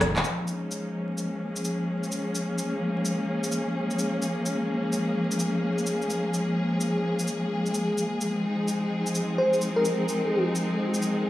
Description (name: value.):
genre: future garage.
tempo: 128 BPM.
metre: 4/4.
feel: swing 65% on 16ths.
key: unclear.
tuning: A4 = 440 Hz.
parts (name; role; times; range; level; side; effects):
bright studio string section; sustained chords; 0.0-11.3 s; F3 to Ab4; -26 LUFS; left 1 dB; low-pass filter.
organic electronic drum kit; drums; 0.0-11.1 s; handclaps, hi-hat, rim click, shaker, woodblock; -32 LUFS; equal; none.
bell-like FM electric piano; melody; 9.4-10.4 s; Bb4 to C5; -26 LUFS; equal; chorus, tape echo.
room: moderate digital room reverb, RT60 1.1 s.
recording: dry, gritty hardware recording, vinyl crackle, studio reverb.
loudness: -25 LUFS.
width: side -14 dB against mid.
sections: 0.2-11.3 A section.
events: drum fill 0.0; band accent 0.1; filter sweep on string section 0.2-11.3.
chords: 0.2 Bbm7; 7.7 Fm7.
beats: | 0.24 0.71 1.18 1.65 | 2.12 2.59 3.06 3.52 | 3.99 4.46 4.93 5.40 | 5.87 6.34 6.81 7.27 | 7.74 8.21 8.68 9.15 | 9.62 10.09 10.56 11.02.